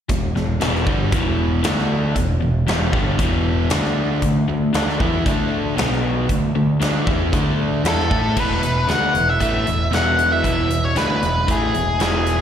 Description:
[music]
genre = classic rock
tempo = 116 BPM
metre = 4/4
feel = straight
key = E mixolydian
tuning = A4 = 440 Hz
[part]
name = cranked stack guitar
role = riff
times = 0.1-12.4 s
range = E2 to A4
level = -24 LUFS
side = right 10 dB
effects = overdrive, slapback echo
[part]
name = overdriven electric guitar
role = riff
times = 0.1-12.4 s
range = E2 to A4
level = -23 LUFS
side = left 7 dB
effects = slapback echo
[part]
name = growling picked electric bass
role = bass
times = 0.1-12.4 s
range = E1 to A2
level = -23 LUFS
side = equal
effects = overdrive
[part]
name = big rock drum kit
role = drums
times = 0.1-12.4 s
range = crash cymbal, hi-hat, kick drum, snare drum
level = -23 LUFS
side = equal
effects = none
[part]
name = octave-fuzz lead guitar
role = melody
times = 7.9-12.4 s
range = G#4 to F#5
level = -20 LUFS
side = left 1 dB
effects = distortion, slapback echo
[part]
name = picked swing-style acoustic guitar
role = accompaniment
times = 8.4-12.4 s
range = E2 to E4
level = -31 LUFS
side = right 2 dB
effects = slapback echo
[sound]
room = light reverb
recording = live gig heard through the venue's PA, recital hall reverb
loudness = -16 LUFS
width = side -9 dB against mid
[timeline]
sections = 0.1-8.4 A section; 8.4-12.4 B section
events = none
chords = 0.1 E5; 1.6 D5; 2.2 E5; 3.7 D5; 5.8 B5; 6.3 D5; 8.4 E

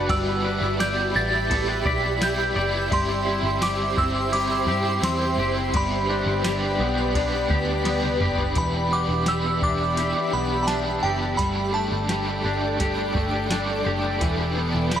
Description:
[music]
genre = dream pop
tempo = 85 BPM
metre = 4/4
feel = straight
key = unclear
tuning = A4 = 440 Hz
[part]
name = glassy synth bell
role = melody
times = 0.0-15.0 s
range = G5 to B6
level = -27 LUFS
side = right 1 dB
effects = chorus, tape echo
[part]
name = crunchy overdriven guitar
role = accompaniment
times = 0.0-15.0 s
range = E3 to D5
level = -28 LUFS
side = right 2 dB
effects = tremolo, ensemble chorus, tape echo
[part]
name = shimmering ambient pad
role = sustained chords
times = 0.0-15.0 s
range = G4 to D6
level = -28 LUFS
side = equal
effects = chorus, built-in reverb
[part]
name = semi-hollow electric guitar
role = arpeggios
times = 0.0-15.0 s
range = E3 to D5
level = -28 LUFS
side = left 2 dB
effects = wide subtle chorus, tape echo
[part]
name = vintage muted picked electric bass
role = bass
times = 0.0-15.0 s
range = E1 to G2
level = -29 LUFS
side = equal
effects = none
[part]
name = soft vintage rhythm box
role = drums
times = 0.1-15.0 s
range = hi-hat, kick drum, ride cymbal, snare drum, tambourine, toms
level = -28 LUFS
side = equal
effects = overdrive
[sound]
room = light reverb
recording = echo-heavy mix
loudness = -21 LUFS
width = side -9 dB against mid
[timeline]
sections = 0.0-8.6 A section; 8.6-15.0 B section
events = drum fill 7.9-8.6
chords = 0.1 Em7/G; 2.9 C/G; 5.7 G; 8.6 Em7; 11.4 Gsus2; 14.2 Em7

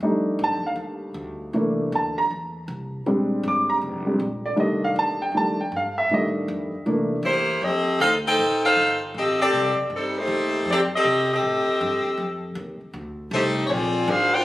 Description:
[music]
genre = jazz, big band swing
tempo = 158 BPM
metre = 4/4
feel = swing 65% on 8ths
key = F mixolydian, F major from 7.6 s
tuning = A4 = 444 Hz
[part]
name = warm baby grand piano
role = accompaniment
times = 0.0-7.2 s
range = Eb3 to D6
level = -22 LUFS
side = equal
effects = none
[part]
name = upright bass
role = bass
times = 0.0-14.4 s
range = F1 to C3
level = -33 LUFS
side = equal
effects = none
[part]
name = warm saxophone section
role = melody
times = 7.2-14.4 s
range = G3 to G5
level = -20 LUFS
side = equal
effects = none
[sound]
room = moderate echo chamber reverb, RT60 2.3 s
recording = recorded on a phone in the room, studio reverb, compression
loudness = -20 LUFS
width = side -16 dB against mid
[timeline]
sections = 0.0-7.6 A section; 7.6-14.4 B section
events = grand piano solo 0.0-7.6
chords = 0.0 F13; 1.5 C13; 3.1 Bb13; 4.6 F13; 6.9 C13; 7.6 F13; 13.7 Bb9

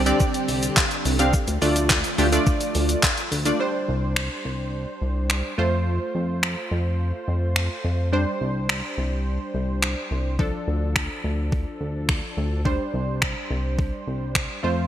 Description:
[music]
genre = dance-pop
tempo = 106 BPM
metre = 4/4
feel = straight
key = unclear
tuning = A4 = 440 Hz
[part]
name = soft string machine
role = sustained chords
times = 0.0-3.6 s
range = D3 to G4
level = -28 LUFS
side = equal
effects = ensemble chorus, sidechain pumping
[part]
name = chorused synth bass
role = bass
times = 0.0-14.9 s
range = C2 to F2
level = -24 LUFS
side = equal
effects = sidechain pumping
[part]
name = funky polysynth comp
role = accompaniment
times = 0.1-14.9 s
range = F3 to F5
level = -26 LUFS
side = right 1 dB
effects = chorus, sidechain pumping
[part]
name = gated 80s digital drum machine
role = drums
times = 0.1-14.5 s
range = finger snaps, handclaps, hi-hat, kick drum, shaker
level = -24 LUFS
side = equal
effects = gated reverb, overdrive
[part]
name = tambourine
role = percussion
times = 0.8-3.2 s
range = none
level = barely audible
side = none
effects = none
[sound]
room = light reverb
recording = bright 1980s-style digital production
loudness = -21 LUFS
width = side -11 dB against mid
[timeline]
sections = 0.0-3.6 A section; 3.6-14.9 B section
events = drop 0.0-3.6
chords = 0.0 Csus2; 1.3 Dm; 3.6 Csus2; 5.6 F; 8.1 Csus2; 10.4 Dm; 12.7 Csus2

